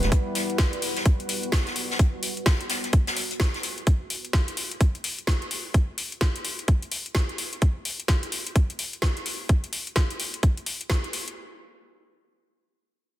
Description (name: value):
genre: bass house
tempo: 128 BPM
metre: 4/4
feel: swing 61% on 16ths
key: E minor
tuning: A4 = 439 Hz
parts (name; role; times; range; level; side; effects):
- deep dark ambient pad; sustained chords; 0.0-3.8 s; G3 to B4; -33 LUFS; equal; chorus, built-in reverb, sidechain pumping
- garage drum kit; drums; 0.0-11.3 s; hi-hat, snare drum; -29 LUFS; left 1 dB; studio reverb
- jazz brush drum kit; drums; 0.0-3.8 s; hi-hat, snare drum; -32 LUFS; left 2 dB; sidechain pumping on hats, high-pass filter on hats, studio reverb, high-pass filter on snare, high-pass filter on room
- electronic kick drum; drums; 0.1-11.0 s; none; -21 LUFS; equal; studio reverb
room: light reverb, small room reverb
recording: dense, heavily limited modern master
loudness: -23 LUFS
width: side -14 dB against mid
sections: 0.0-11.4 A section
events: none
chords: 0.0 Em (rootless)